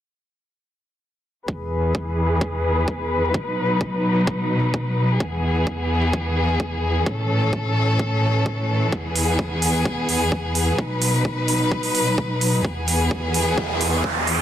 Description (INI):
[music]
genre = EDM, festival progressive house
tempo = 129 BPM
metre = 4/4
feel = straight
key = E major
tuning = A4 = 441 Hz
[part]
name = rich chamber string section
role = sustained chords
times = 1.5-14.4 s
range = E2 to B4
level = -20 LUFS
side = equal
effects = sidechain pumping, low-pass filter
[part]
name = electronic kick drum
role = drums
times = 1.5-14.1 s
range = none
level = -27 LUFS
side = equal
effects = overdrive, high-pass filter on kick
[part]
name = electronic hi-hat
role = drums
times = 9.2-14.4 s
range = none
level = -24 LUFS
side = right 4 dB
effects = low-pass filter on hats
[part]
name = riser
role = sound effects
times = 13.0-14.4 s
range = none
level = -25 LUFS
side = right 3 dB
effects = none
[sound]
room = light reverb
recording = dense, heavily limited modern master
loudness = -19 LUFS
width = side -11 dB against mid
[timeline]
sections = 1.5-14.4 A section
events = filter sweep on string section 1.5-14.4; riser 13.0-14.4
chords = 1.5 E; 3.3 B; 5.2 E; 7.1 A; 8.9 E; 10.8 B; 12.6 E